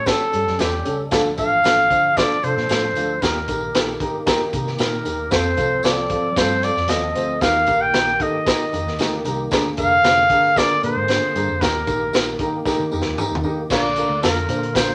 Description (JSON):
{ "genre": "uptempo 1960s-style soul", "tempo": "114 BPM", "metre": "4/4", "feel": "straight", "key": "unclear", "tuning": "A4 = 440 Hz", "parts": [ { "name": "warm trumpet", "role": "melody", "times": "0.0-14.9 s", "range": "G4 to G5", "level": "-21 LUFS", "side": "equal", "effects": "none" }, { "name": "tonewheel organ", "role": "sustained chords", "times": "0.0-14.9 s", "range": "D3 to A4", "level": "-32 LUFS", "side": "equal", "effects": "slow rotary speaker, overdrive, chorus vibrato" }, { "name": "vintage muted fingered electric bass", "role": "bass", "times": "0.0-14.9 s", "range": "F1 to F3", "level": "-31 LUFS", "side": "equal", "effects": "none" }, { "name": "dark baby grand piano", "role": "accompaniment", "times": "0.1-14.9 s", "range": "C4 to C5", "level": "-26 LUFS", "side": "equal", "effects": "none" }, { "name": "crunchy breakbeat drum kit", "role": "drums", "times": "0.1-14.9 s", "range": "crash cymbal, hi-hat, kick drum, snare drum, toms", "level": "-25 LUFS", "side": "equal", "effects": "none" }, { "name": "tambourine", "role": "percussion", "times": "0.1-14.9 s", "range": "none", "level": "-38 LUFS", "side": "equal", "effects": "none" } ], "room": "wet studio reverb, RT60 0.8 s", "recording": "none", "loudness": "-19 LUFS", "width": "mono", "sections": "0.0-13.7 A section; 13.7-14.9 B section", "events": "drum fill 12.7-13.7", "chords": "0.0 A7; 1.1 Dm; 3.2 Eb; 5.3 F; 7.4 Eb; 9.5 Bb7; 11.6 Eb; 13.7 Bb" }